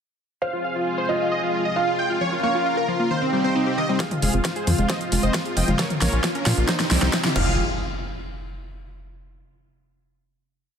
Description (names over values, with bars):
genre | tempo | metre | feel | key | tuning
uplifting trance | 134 BPM | 4/4 | straight | F minor | A4 = 440 Hz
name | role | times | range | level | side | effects
dense compressed supersaw | melody | 0.4-7.5 s | C4 to G5 | -25 LUFS | equal | cassette tape, sidechain pumping, low-pass filter, digital delay
felt-muted upright piano | second line | 0.4-3.9 s | C5 to F5 | -27 LUFS | right 1 dB | digital delay
lush unison pad | sustained chords | 0.4-7.6 s | Ab2 to Bb4 | -29 LUFS | equal | chorus, sidechain pumping
analog pluck | arpeggios | 2.2-7.6 s | Eb3 to Bb4 | -27 LUFS | left 2 dB | chorus, sidechain pumping, digital delay
big-room dance drum kit | drums | 4.0-7.4 s | crash cymbal, hi-hat, snare drum, toms | -25 LUFS | equal | overdrive, sidechain pumping on hats, sidechain pumping on toms, sidechain pumping on cymbals
electronic kick drum | drums | 4.0-7.4 s | none | -28 LUFS | equal | overdrive, high-pass filter on kick
riser and impact | sound effects | 5.5-9.1 s | none | -31 LUFS | right 1 dB | none
tight sequencer bass | bass | 4.2-7.6 s | F1 to Bb2 | -22 LUFS | equal | sidechain pumping
room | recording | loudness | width
light reverb | none | -20 LUFS | side -7 dB against mid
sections
0.4-4.0 intro; 4.0-7.6 build; 7.6-9.4 final hit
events
build-up 4.0-7.6; drum fill 4.0-7.6; filter sweep on synth pluck 4.0-7.6; riser 5.5-7.6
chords
0.4 Fm; 2.2 Bbm; 3.1 Cm; 4.0 Fm; 5.8 Bbm; 6.7 Cm; 7.4 Fm; 7.6 N.C.